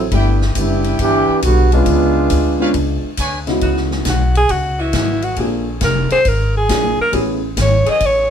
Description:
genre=jazz, big band swing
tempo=137 BPM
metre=4/4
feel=swing 67% on 8ths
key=unclear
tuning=A4 = 439 Hz
part: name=clear trombone section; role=second line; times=0.0-3.1 s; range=D3 to G4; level=-16 LUFS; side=right 2 dB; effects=none
part: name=upright bass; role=bass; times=0.0-8.3 s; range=E#1 to D2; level=-18 LUFS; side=equal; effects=none
part: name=dark upright piano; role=accompaniment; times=0.1-7.4 s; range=C#3 to G#4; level=-20 LUFS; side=left 2 dB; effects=none
part: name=clear trumpet section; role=stabs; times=0.1-3.4 s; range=D4 to G#5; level=-24 LUFS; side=right 1 dB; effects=none
part: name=swinging big-band drum kit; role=drums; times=0.1-8.1 s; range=hi-hat, kick drum, ride cymbal, snare drum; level=-24 LUFS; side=left 2 dB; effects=none
part: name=warm saxophone section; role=sustained chords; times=3.6-8.3 s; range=D3 to D#5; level=-27 LUFS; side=equal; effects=none
part: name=breathy alto saxophone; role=melody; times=4.1-8.3 s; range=E4 to D#5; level=-16 LUFS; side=equal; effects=none
room=moderate small room reverb, RT60 0.5 s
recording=band playing live in one room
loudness=-13 LUFS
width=side -8 dB against mid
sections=0.0-3.6 A section; 3.6-8.3 B section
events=trombone section solo 0.0-3.6; alto saxophone solo 3.6-8.3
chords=0.1 G6; 1.9 C#7b9; 3.6 C#m11; 5.4 A#9; 7.1 Amaj7

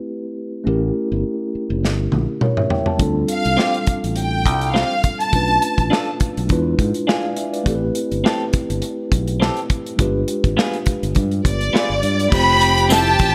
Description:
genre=lush 1970s-style soul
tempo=103 BPM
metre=4/4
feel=swing 54% on 16ths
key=unclear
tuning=A4 = 440 Hz
part: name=mellow tine electric piano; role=accompaniment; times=0.0-13.3 s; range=G3 to A5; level=-25 LUFS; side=equal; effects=none
part: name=fingered electric bass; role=bass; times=0.7-13.3 s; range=F1 to G#2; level=-24 LUFS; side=equal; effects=none
part: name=modern studio drum kit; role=drums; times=1.8-13.3 s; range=crash cymbal, hi-hat, kick drum, snare drum, toms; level=-23 LUFS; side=equal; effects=none
part: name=warm studio violin section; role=melody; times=3.3-6.0, 11.5-13.3 s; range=D5 to B5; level=-21 LUFS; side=equal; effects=none
part: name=clean electric guitar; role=riff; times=3.6-13.1 s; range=B3 to A4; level=-26 LUFS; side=equal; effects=none
part: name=warm studio violin section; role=second line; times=12.3-13.3 s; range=G4 to G5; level=-24 LUFS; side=equal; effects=none
part: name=tambourine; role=percussion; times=12.3-13.3 s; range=none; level=-31 LUFS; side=equal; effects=none
room=light reverb, small room ambience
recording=none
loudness=-19 LUFS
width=mono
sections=0.0-12.3 A section; 12.3-13.3 B section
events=drum fill 1.8-3.0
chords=0.0 Am9; 0.7 A7b9; 3.0 Dm7; 5.3 Bm7b5; 6.5 E7b9; 7.7 Am7; 10.0 G7b9; 12.3 Fmaj7

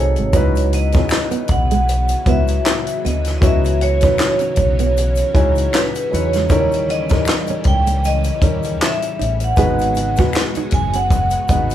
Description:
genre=R&B, neo-soul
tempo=78 BPM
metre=4/4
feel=swing 57% on 16ths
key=C# minor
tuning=A4 = 439 Hz
part: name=vibraphone with medium hard mallets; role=melody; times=0.0-11.7 s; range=B4 to G#5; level=-20 LUFS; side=right 1 dB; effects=none
part: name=clear upright piano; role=accompaniment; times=0.0-11.7 s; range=B#2 to B4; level=-23 LUFS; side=left 1 dB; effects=none
part: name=deep dub fingered electric bass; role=bass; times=0.0-11.7 s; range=F#1 to E2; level=-19 LUFS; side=equal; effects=none
part: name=nylon-string guitar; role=second line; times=0.2-11.6 s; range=G#3 to G#4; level=-26 LUFS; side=right 7 dB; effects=none
part: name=compact cocktail drum kit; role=drums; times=0.2-11.7 s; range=handclaps, hi-hat, kick drum, snare drum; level=-18 LUFS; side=left 1 dB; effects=none
part: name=string machine, violins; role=sustained chords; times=0.3-11.7 s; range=C#3 to F#4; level=-29 LUFS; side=equal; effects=ensemble chorus
part: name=egg shaker and finger snaps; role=percussion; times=0.3-11.7 s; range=none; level=-34 LUFS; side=left 5 dB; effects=none
room=moderate large studio reverb, RT60 0.8 s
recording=band playing live in one room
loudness=-14 LUFS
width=side -11 dB against mid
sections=0.3-11.7 A section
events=none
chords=0.3 C#m11; 6.5 D#7b9; 9.6 G#m7

